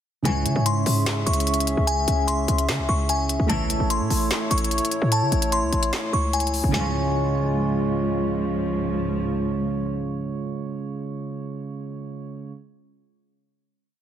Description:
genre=hip hop, trap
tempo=148 BPM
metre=4/4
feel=half-time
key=C# harmonic minor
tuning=A4 = 440 Hz
part: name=soft electric-piano-like synth keys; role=accompaniment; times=0.2-12.5 s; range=C#3 to E5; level=-28 LUFS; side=right 4 dB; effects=chorus
part: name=glassy synth bell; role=melody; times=0.3-7.9 s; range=G#5 to C#6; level=-27 LUFS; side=left 2 dB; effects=chorus, tape echo
part: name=dark analog pad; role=sustained chords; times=0.3-9.9 s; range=C#3 to E5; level=-29 LUFS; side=left 1 dB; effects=chorus
part: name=dark studio string section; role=stabs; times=0.3-0.4, 3.5-3.7, 6.7-9.9 s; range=C#2 to E#3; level=-29 LUFS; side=left 1 dB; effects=none
part: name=short 808-style bass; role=bass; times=0.3-8.3 s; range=A1 to C#3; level=-24 LUFS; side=equal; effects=none
part: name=trap drum kit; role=drums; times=0.3-6.8 s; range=handclaps, hi-hat, snare drum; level=-27 LUFS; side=left 1 dB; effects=none
room=light reverb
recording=dense, heavily limited modern master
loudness=-21 LUFS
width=side -10 dB against mid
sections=0.3-6.7 hook; 6.7-10.0 final chord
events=none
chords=0.3 C#m; 3.5 A; 6.7 C#

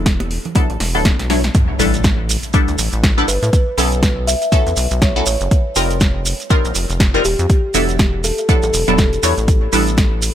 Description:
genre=deep house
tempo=121 BPM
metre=4/4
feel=swing 58% on 16ths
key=unclear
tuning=A4 = 439 Hz
part: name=filtered dub chord stab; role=stabs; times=0.0-10.3 s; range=F#3 to C#5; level=-20 LUFS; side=left 1 dB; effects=phaser, lush chorus, cassette tape, sidechain pumping, dub echo
part: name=rubbery square bass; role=bass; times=0.0-10.3 s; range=D1 to A2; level=-20 LUFS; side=equal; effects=sidechain pumping
part: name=deep house drum kit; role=drums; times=0.1-10.3 s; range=hi-hat, snare drum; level=-22 LUFS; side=equal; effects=overdrive, studio reverb
part: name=electronic kick drum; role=drums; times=0.1-10.1 s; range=none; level=-14 LUFS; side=equal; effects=overdrive, studio reverb
part: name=congas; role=percussion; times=0.2-1.5 s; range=none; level=-30 LUFS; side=right 3 dB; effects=none
part: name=shekere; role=percussion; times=1.5-10.3 s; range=none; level=-23 LUFS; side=right 5 dB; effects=none
part: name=impact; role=sound effects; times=1.5-3.5 s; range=none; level=-26 LUFS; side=equal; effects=none
part: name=kalimba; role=melody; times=3.3-9.1 s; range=G4 to E5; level=-22 LUFS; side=left 1 dB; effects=tape echo
room=small room ambience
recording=none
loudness=-13 LUFS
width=side -11 dB against mid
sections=0.0-1.5 A section; 1.5-10.3 B section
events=drum fill 1.2-1.5; drop 1.5-10.3; impact 1.5-3.5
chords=0.0 E9sus4; 1.5 A9sus4; 3.5 B9sus4; 5.5 F9sus4; 7.5 E9sus4; 9.5 A9sus4

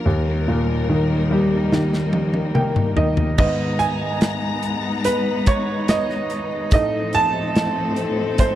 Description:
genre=pop ballad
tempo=72 BPM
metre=4/4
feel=straight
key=G# harmonic minor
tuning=A4 = 439 Hz
part: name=clear concert grand piano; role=accompaniment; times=0.0-8.6 s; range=D#2 to A5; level=-20 LUFS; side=right 1 dB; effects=none
part: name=warm studio string section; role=sustained chords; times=0.0-8.6 s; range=A2 to A#5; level=-24 LUFS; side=left 3 dB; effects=none
part: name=modern studio drum kit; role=drums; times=1.7-8.6 s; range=crash cymbal, hi-hat, kick drum, snare drum, toms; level=-20 LUFS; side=equal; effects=none
room=studio ambience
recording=dry, close 1970s-style studio recording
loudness=-18 LUFS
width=side -12 dB against mid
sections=0.0-3.4 A section; 3.4-8.6 B section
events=break 0.1-3.4; drum fill 1.7-3.4; grand piano fill 2.1-3.4; grand piano solo 3.4-8.6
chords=0.1 D#; 3.4 G#madd9; 6.7 F7/A

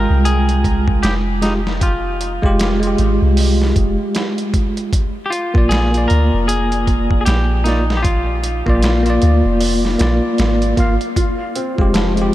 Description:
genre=trip hop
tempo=77 BPM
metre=4/4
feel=swing 59% on 16ths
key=F dorian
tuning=A4 = 440 Hz
part: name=semi-hollow electric guitar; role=melody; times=0.0-9.2 s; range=Eb4 to Bb4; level=-23 LUFS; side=left 1 dB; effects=vintage 12-bit sampler grit, tape echo
part: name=bell-like tine electric piano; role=accompaniment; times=0.0-12.3 s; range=Ab3 to G5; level=-18 LUFS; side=equal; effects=harmonic tremolo, tape echo
part: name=soft 808-style bass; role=bass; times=0.0-12.3 s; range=F1 to D2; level=-17 LUFS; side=equal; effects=none
part: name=dusty soul sampler-style drum kit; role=drums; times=0.3-12.3 s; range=hi-hat, kick drum, snare drum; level=-20 LUFS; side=equal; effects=overdrive
part: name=felt-muted upright piano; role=arpeggios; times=11.2-12.3 s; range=F3 to F4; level=-24 LUFS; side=equal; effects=tape echo
room=light reverb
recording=none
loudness=-14 LUFS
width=side -14 dB against mid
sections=0.0-12.3 A section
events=none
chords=0.0 Fmadd9; 4.9 Bb; 11.2 Fmadd9

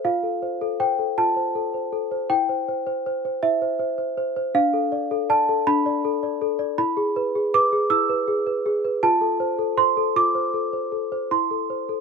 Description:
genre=classical, lullaby for celesta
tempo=53 BPM (dotted quarters)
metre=6/8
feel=straight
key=unclear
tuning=A4 = 440 Hz
part: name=worn celesta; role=solo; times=0.0-12.0 s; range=D4 to E6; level=-20 LUFS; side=equal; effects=none
room=light reverb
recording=minimal, uncompressed stereo recording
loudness=-20 LUFS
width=side -5 dB against mid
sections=0.0-12.0 A section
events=none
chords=0.1 F; 2.3 C/E; 4.6 Dm; 6.8 E; 9.0 F; 11.3 Am/E

